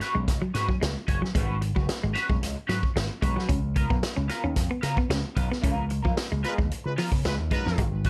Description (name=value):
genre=funk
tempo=112 BPM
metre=4/4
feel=straight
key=unclear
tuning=A4 = 440 Hz
part: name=electric guitar at the edge of break-up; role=accompaniment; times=0.0-8.1 s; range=B3 to C#5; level=-35 LUFS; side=equal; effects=wah, lush chorus
part: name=semi-hollow electric guitar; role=riff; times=0.0-8.1 s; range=E#3 to C#4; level=-34 LUFS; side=equal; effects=none
part: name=vintage drum kit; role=drums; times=0.0-8.1 s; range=hi-hat, kick drum, snare drum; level=-30 LUFS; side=equal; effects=none
part: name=slap bass with an envelope filter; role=bass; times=0.1-8.1 s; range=F#1 to C#3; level=-31 LUFS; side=equal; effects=none
part: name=warm horn section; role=second line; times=6.4-7.9 s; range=F#3 to B4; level=-35 LUFS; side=equal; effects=analog delay
room=light reverb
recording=none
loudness=-27 LUFS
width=mono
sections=0.0-8.1 A section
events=band accent 5.6-7.8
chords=0.0 G#m7; 3.5 C#13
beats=0.27 0.81 | 1.34 1.88 2.42 2.95 | 3.49 4.02 4.56 5.10 | 5.63 6.17 6.71 7.24 | 7.78